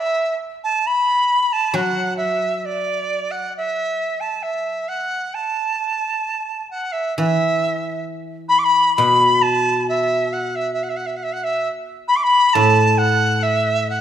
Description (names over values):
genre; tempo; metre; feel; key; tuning
chinese traditional; 67 BPM; 4/4; straight; A zhi mode; A4 = 437 Hz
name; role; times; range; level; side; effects
bright reedy dizi; melody; 0.0-14.0 s; D5 to D6; -18 LUFS; equal; none
guzheng; accompaniment; 1.7-14.0 s; A2 to F#3; -22 LUFS; equal; none
room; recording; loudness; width
moderate recital hall reverb, RT60 1.6 s; none; -17 LUFS; side -10 dB against mid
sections
0.0-7.2 A section; 7.2-14.0 B section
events
none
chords
none